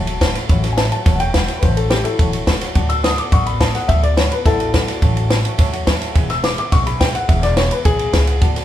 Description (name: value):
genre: rockabilly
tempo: 212 BPM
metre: 4/4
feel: straight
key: A major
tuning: A4 = 440 Hz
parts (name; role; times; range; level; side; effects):
- dark upright piano; melody; 0.0-8.4 s; E4 to E6; -21 LUFS; left 3 dB; none
- picked steel-string acoustic guitar; accompaniment; 0.0-8.6 s; A2 to A4; -27 LUFS; left 5 dB; none
- upright bass; bass; 0.0-8.6 s; E1 to E2; -20 LUFS; equal; none
- warm upright piano; accompaniment; 0.1-8.6 s; B4 to B5; -30 LUFS; right 6 dB; none
- compact cocktail drum kit; drums; 0.1-8.6 s; kick drum, ride cymbal, snare drum; -16 LUFS; equal; none
room: moderate large studio reverb, RT60 1.2 s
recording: band playing live in one room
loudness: -14 LUFS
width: side -12 dB against mid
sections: 0.0-8.6 A section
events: none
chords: 0.0 A6; 2.8 D6; 5.0 A6; 6.2 E6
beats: 0.21 | 0.49 0.78 1.06 1.34 | 1.63 1.91 2.19 2.48 | 2.76 3.04 3.32 3.61 | 3.89 4.17 4.46 4.74 | 5.02 5.30 5.59 5.87 | 6.15 6.44 6.72 7.00 | 7.29 7.57 7.85 8.13 | 8.42